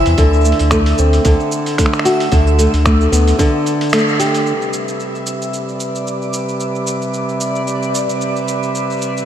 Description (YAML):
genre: folktronica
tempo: 112 BPM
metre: 4/4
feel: swing 56% on 16ths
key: C major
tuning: A4 = 441 Hz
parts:
  - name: nylon-string guitar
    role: arpeggios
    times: 0.0-5.0 s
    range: C3 to G4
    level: -16 LUFS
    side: equal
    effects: analog delay
  - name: warm sub bass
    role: bass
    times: 0.0-3.3 s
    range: D2 to E2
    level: -13 LUFS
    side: equal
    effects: none
  - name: backwards swelling texture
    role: texture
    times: 0.0-9.3 s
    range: D5 to E6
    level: -24 LUFS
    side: right 1 dB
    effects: built-in reverb, analog chorus
  - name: lo-fi sampler-style drum kit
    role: drums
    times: 0.1-9.3 s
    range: cabasa, finger snaps, hi-hat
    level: -22 LUFS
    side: right 1 dB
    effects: overdrive
  - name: electronic kick drum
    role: drums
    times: 0.2-3.5 s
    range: none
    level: -16 LUFS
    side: equal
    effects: none
  - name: dark string quartet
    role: sustained chords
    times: 4.5-9.3 s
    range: C3 to E5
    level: -20 LUFS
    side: right 1 dB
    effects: low-pass filter
room: moderate huge ambient reverb, RT60 4.7 s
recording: dreamy mix soaked in reverb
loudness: -13 LUFS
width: side -10 dB against mid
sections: 0.0-4.5 A section; 4.5-9.3 B section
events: band accent 3.9; filter sweep on string quartet 4.5-9.3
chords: 0.2 D7; 2.3 Bm7/D; 3.4 Dsus4; 4.5 Cmaj7